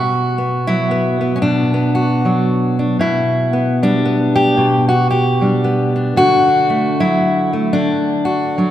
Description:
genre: folk, solo fingerstyle acoustic guitar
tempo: 114 BPM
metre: 3/4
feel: swing 58% on 8ths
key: B minor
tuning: A4 = 440 Hz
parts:
  - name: fingerpicked steel-string acoustic guitar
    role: solo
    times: 0.0-8.7 s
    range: B2 to G4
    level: -13 LUFS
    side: equal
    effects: none
room: wet concert hall reverb, RT60 2.3 s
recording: recorded in a church or concert hall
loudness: -13 LUFS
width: side -12 dB against mid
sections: 0.0-8.7 A section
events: none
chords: 0.0 Bm; 3.0 G/B; 6.2 D

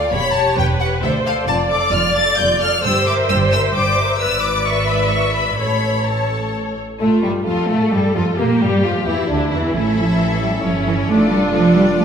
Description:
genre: quick classical-period movement for string orchestra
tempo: 132 BPM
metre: 3/4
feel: straight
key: unclear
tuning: A4 = 440 Hz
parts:
  - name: rich chamber violin section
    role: melody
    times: 0.0-12.0 s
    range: G3 to A6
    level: -21 LUFS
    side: left 4 dB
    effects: none
  - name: rich studio violin section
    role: second line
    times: 0.0-12.0 s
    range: G3 to F5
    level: -24 LUFS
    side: left 2 dB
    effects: none
  - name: rich chamber viola section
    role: accompaniment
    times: 0.0-12.0 s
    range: C#4 to E5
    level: -21 LUFS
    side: equal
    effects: none
  - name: clear chamber double bass section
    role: bass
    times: 0.0-12.0 s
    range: E1 to Bb2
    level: -23 LUFS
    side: right 2 dB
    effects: none
  - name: rich studio cello section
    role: bass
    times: 0.0-12.0 s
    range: D2 to Bb3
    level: -20 LUFS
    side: right 2 dB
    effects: none
room: wet recital hall reverb, RT60 1.6 s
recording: recorded in a church or concert hall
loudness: -14 LUFS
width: side -7 dB against mid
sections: 0.0-7.0 A section; 7.0-12.0 B section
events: none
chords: 0.1 C#dim/E; 1.0 D5; 1.5 Dm/F; 2.8 Em7b5/G; 4.2 E7/G#; 5.6 A; 7.0 Fadd9; 8.4 Edim; 9.7 A; 10.6 A7/G; 11.1 Dm/F

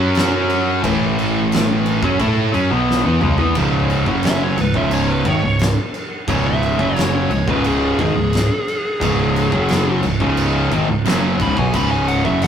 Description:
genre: stoner and doom metal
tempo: 88 BPM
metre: 4/4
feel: straight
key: C# minor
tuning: A4 = 439 Hz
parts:
  - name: overdriven electric guitar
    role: riff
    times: 0.0-12.5 s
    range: C#2 to A4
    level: -21 LUFS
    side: left 2 dB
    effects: none
  - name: thick fuzz guitar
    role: riff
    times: 0.0-12.5 s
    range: C#2 to A4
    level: -25 LUFS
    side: left 6 dB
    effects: distortion
  - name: thick fuzz guitar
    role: riff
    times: 0.0-12.5 s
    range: C#2 to A4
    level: -20 LUFS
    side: right 4 dB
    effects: distortion
  - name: growling fingered electric bass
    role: bass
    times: 0.0-12.5 s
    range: C#1 to A2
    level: -25 LUFS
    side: left 1 dB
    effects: overdrive
  - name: oversized low-tuned drum kit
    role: drums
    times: 0.1-12.5 s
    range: crash cymbal, kick drum, snare drum, toms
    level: -22 LUFS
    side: equal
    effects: none
  - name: fuzz lead guitar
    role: melody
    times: 4.3-12.5 s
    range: G#4 to B5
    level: -22 LUFS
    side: right 1 dB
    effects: distortion
room: moderate studio reverb, RT60 0.6 s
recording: rough rehearsal-room recording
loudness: -15 LUFS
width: side -8 dB against mid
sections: 0.0-3.6 A section; 3.6-12.5 B section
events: drum fill 2.9-3.6; lead electric guitar solo 3.6-12.5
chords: 0.0 F#5; 0.8 A5; 3.6 C#5

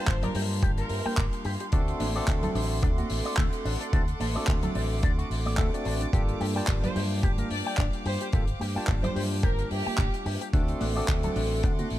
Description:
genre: nu-disco, nu disco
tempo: 109 BPM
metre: 4/4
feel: swing 56% on 16ths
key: G minor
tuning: A4 = 440 Hz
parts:
  - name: rich chamber violin section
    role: melody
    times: 0.0-1.2, 6.8-10.3 s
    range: G4 to D5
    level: -36 LUFS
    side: equal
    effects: ping-pong delay
  - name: barky tine electric piano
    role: accompaniment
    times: 0.0-12.0 s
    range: G3 to A5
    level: -34 LUFS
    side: equal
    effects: overdrive, vintage 12-bit sampler grit, sidechain pumping, ping-pong delay
  - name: rich chamber string section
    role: sustained chords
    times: 0.0-12.0 s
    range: G4 to D6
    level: -39 LUFS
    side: right 2 dB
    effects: sidechain pumping
  - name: electric guitar with an envelope filter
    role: riff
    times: 0.0-11.9 s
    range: A3 to G5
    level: -38 LUFS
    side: left 4 dB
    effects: lush chorus, ping-pong delay
  - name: fingered electric bass with an envelope filter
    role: bass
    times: 0.1-12.0 s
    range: G1 to G2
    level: -30 LUFS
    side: equal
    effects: none
  - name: damped 70s drum kit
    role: drums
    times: 0.1-12.0 s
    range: handclaps, hi-hat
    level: -35 LUFS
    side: left 1 dB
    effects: small room ambience
  - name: electronic kick drum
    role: drums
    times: 0.1-11.8 s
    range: none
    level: -26 LUFS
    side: equal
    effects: overdrive, small room ambience
  - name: congas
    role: percussion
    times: 0.2-11.9 s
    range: none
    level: -36 LUFS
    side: right 3 dB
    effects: none
room: small room ambience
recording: none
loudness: -25 LUFS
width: side -14 dB against mid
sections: 0.0-12.0 A section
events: none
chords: 0.0 Gm7; 1.7 D7; 6.1 Gm7; 10.5 D7

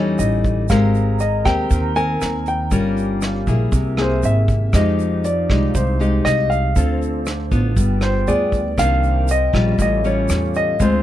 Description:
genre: bossa nova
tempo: 119 BPM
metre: 4/4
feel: straight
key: C minor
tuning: A4 = 437 Hz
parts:
  - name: warm grand piano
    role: melody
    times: 0.0-11.0 s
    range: C5 to Ab5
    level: -22 LUFS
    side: left 1 dB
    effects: none
  - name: nylon-string guitar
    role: accompaniment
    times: 0.0-11.0 s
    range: A2 to Bb4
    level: -21 LUFS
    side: left 3 dB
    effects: none
  - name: mellow large flute ensemble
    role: sustained chords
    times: 0.0-11.0 s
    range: C4 to Bb5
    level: -30 LUFS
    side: right 5 dB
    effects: none
  - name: upright bass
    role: bass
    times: 0.0-11.0 s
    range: G1 to F2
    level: -20 LUFS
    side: right 1 dB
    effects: none
  - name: vintage brush drum kit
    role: drums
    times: 0.2-10.9 s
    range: hi-hat, kick drum, rim click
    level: -23 LUFS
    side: right 1 dB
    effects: none
  - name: tube shaker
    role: percussion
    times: 0.2-11.0 s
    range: none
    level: -37 LUFS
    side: right 9 dB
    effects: none
room: little or no reverb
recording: close, detailed microphones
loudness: -16 LUFS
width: side -12 dB against mid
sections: 0.0-11.0 A section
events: none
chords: 0.0 A7#11; 0.7 Abmaj9; 2.7 Gm7b5; 3.7 Caug7; 4.7 Fm9; 6.8 Dm7; 7.8 G7b9; 8.8 Cm9; 9.8 A7b13

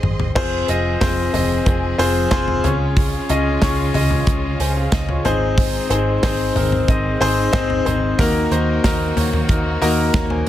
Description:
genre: piano-driven pop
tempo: 92 BPM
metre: 4/4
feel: straight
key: unclear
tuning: A4 = 440 Hz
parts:
  - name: clear grand piano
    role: accompaniment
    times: 0.0-10.5 s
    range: Ab2 to Bb5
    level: -19 LUFS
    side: left 2 dB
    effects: none
  - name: warm studio string section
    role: sustained chords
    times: 0.0-10.5 s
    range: Db3 to C6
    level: -29 LUFS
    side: right 2 dB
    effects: none
  - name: vintage muted picked electric bass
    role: bass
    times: 0.0-10.4 s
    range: F1 to Eb2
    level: -22 LUFS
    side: right 1 dB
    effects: none
  - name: natural country drum kit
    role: drums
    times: 0.0-10.5 s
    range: crash cymbal, hi-hat, kick drum, snare drum, toms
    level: -21 LUFS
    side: equal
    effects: none
room: light reverb, small room reverb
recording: dense, heavily limited modern master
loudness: -16 LUFS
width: side -12 dB against mid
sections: 0.4-10.5 A section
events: drum fill 0.0-0.4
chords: 0.4 Fm; 2.6 Db; 5.3 Ab; 8.2 Ebm

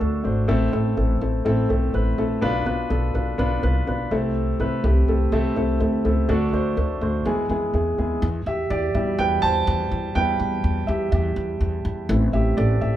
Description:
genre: piano-driven pop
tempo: 124 BPM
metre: 4/4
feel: straight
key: unclear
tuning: A4 = 440 Hz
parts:
  - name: warm concert grand piano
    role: accompaniment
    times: 0.0-13.0 s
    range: A2 to A5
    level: -22 LUFS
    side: equal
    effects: none
  - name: upright bass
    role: bass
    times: 0.0-13.0 s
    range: G#1 to F2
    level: -23 LUFS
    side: equal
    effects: none
room: moderate large studio reverb, RT60 0.8 s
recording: band playing live in one room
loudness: -20 LUFS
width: side -12 dB against mid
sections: 0.0-8.2 A section; 8.2-13.0 B section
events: grand piano solo 8.2-13.0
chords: 0.5 Am; 2.4 Bdim; 4.1 Am/C; 6.3 D; 7.3 E; 8.2 Em; 12.1 Am

